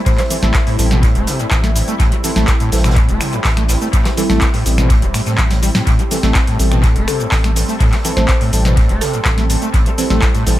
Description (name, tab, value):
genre	acid house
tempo	124 BPM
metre	4/4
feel	straight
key	A minor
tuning	A4 = 440 Hz
part	lush unison pad	sustained chords	0.0-10.6 s	G3 to A4	-25 LUFS	equal	chorus, phaser, sidechain pumping
part	mallet-like synth pluck	melody	0.1-0.3, 7.1-9.7 s	A4 to C5	-27 LUFS	right 1 dB	chorus, dub echo
part	overdriven acid bass	riff	0.1-10.5 s	A1 to A3	-20 LUFS	equal	distortion, tube saturation, ensemble chorus, dub echo
part	saturated sub bass	bass	0.1-10.6 s	E1 to A1	-17 LUFS	equal	tube saturation, sidechain pumping
part	booming analog drum machine	drums	0.1-10.6 s	cabasa, finger snaps, handclaps, hi-hat, snare drum	-20 LUFS	equal	small room reverb, dub echo
part	electronic kick drum	drums	0.1-10.3 s	none	-15 LUFS	equal	small room reverb
part	raw garage drum kit	drums	0.1-10.6 s	hi-hat, snare drum	-32 LUFS	right 2 dB	none
part	deep mellow chord stab	stabs	0.3-10.6 s	G3 to A4	-24 LUFS	right 2 dB	chorus, phaser, cassette tape, dub echo
room	little or no reverb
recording	echo-heavy mix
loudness	-12 LUFS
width	side -14 dB against mid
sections	0.0-10.6 A section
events	none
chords	0.0 Am7